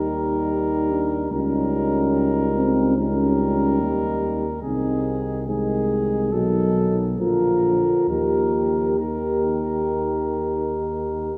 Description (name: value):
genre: classical, hymn-like piece for brass band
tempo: 64-74 BPM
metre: 4/4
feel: rubato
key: Eb major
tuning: A4 = 440 Hz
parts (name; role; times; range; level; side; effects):
- mellow cornet; melody; 0.0-11.3 s; Ab4 to Bb4; -30 LUFS; equal; none
- dark French horn section; second line; 0.0-11.3 s; Eb4 to G4; -28 LUFS; equal; none
- dark euphonium; accompaniment; 0.0-11.2 s; Eb3 to Eb4; -27 LUFS; equal; none
- warm trombone; accompaniment; 0.0-11.3 s; D3 to G3; -31 LUFS; equal; none
- mellow tuba; bass; 0.0-11.3 s; Bb1 to Eb2; -28 LUFS; equal; none
room: wet church reverb, RT60 3.6 s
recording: small room ambience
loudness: -22 LUFS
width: mono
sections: 0.0-11.4 A section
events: none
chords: 0.0 Eb; 1.3 Eb7/Db; 4.6 Ab/C; 6.3 B7; 7.2 Bb; 8.1 Eb